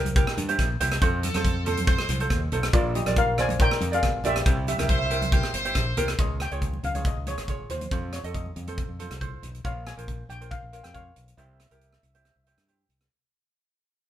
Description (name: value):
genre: calypso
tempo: 139 BPM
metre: 4/4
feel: straight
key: unclear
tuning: A4 = 442 Hz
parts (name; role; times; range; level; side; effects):
- ukulele; accompaniment; 0.0-12.9 s; E4 to Eb5; -31 LUFS; right 3 dB; none
- modern bright fingered electric bass; bass; 0.0-13.1 s; G1 to G2; -30 LUFS; equal; none
- tight funk drum kit; drums; 0.1-13.1 s; hi-hat, kick drum, rim click; -26 LUFS; equal; none
- congas; percussion; 0.1-9.5 s; none; -36 LUFS; right 1 dB; none
- bright horn section; second line; 1.2-2.2, 4.9-6.1 s; A4 to C5; -31 LUFS; left 1 dB; none
- steel pan; melody; 2.7-12.6 s; F4 to Ab5; -29 LUFS; left 1 dB; none
room: moderate studio reverb, RT60 0.9 s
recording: band playing live in one room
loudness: -23 LUFS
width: side -11 dB against mid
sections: 0.0-6.2 A section; 6.2-13.1 B section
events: fade-out 6.2-13.1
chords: 0.0 C; 1.0 F; 2.7 Bb; 4.5 C; 6.2 Dbadd9; 7.9 F7; 9.6 Bbm; 11.4 C